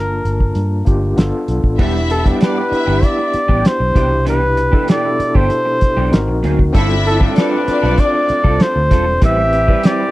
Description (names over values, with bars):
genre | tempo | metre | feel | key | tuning
lush 1970s-style soul | 97 BPM | 4/4 | straight | unclear | A4 = 440 Hz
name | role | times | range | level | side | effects
warm flugelhorn | melody | 0.0-10.1 s | A4 to E5 | -18 LUFS | equal | none
overdriven tine electric piano | accompaniment | 0.0-10.1 s | B2 to A5 | -20 LUFS | left 1 dB | fast tremolo
vintage muted fingered electric bass | bass | 0.0-9.7 s | E1 to G2 | -18 LUFS | equal | none
cloth-damped thuddy drum kit | drums | 0.3-10.0 s | crash cymbal, hi-hat, kick drum, snare drum | -13 LUFS | equal | none
warm studio string section | second line | 1.8-8.3 s | D4 to E5 | -21 LUFS | left 1 dB | none
electric guitar through a small old amp | riff | 1.8-10.0 s | E3 to B4 | -24 LUFS | right 3 dB | ensemble chorus
clear horn section | stabs | 6.7-10.1 s | A2 to G4 | -26 LUFS | left 4 dB | none
room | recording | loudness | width
small room ambience | dry, close 1970s-style studio recording | -12 LUFS | side -17 dB against mid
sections
0.0-1.8 A section; 1.8-10.1 B section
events
none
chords
0.0 Gm9; 1.2 G7; 1.8 Em7; 4.0 Cmaj9; 6.1 Ab9; 6.7 G9sus4; 9.2 Am9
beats
0.56 1.18 | 1.79 2.41 3.03 3.65 | 4.27 4.89 5.51 6.13 | 6.75 7.37 7.98 8.60 | 9.22 9.84